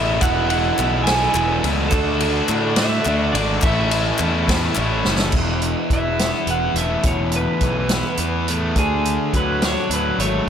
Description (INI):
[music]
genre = indie rock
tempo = 70 BPM (dotted quarters)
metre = 6/8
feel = straight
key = E mixolydian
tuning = A4 = 440 Hz
[part]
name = electric guitar through a small old amp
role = melody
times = 0.0-10.5 s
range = G#4 to G#5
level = -23 LUFS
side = right 2 dB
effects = none
[part]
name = overdriven combo organ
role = sustained chords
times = 0.0-5.3 s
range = A4 to E6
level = -31 LUFS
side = left 1 dB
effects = none
[part]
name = distorted electric guitar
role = riff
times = 0.0-10.5 s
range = E2 to F#4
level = -22 LUFS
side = left 1 dB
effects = distortion
[part]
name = fuzz picked electric bass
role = bass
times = 0.0-10.4 s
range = E1 to A2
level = -23 LUFS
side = equal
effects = overdrive
[part]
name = vintage drum kit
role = drums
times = 0.2-10.3 s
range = crash cymbal, hi-hat, kick drum, ride cymbal, snare drum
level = -22 LUFS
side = equal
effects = none
[part]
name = group handclap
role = percussion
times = 0.2-5.3 s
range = none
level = -29 LUFS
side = left 4 dB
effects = none
[sound]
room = little or no reverb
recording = none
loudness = -17 LUFS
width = side -8 dB against mid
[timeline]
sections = 0.0-5.3 A section; 5.3-10.5 B section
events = drum fill 5.1; clean electric guitar solo 5.3-10.5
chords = 0.0 Esus4; 1.9 Dadd9; 3.6 Aadd9; 5.3 Esus4; 8.8 D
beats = | 0.22 1.07 | 1.93 2.78 | 3.63 4.48 | 5.34 6.19 | 7.05 7.90 | 8.76 9.62 | 10.47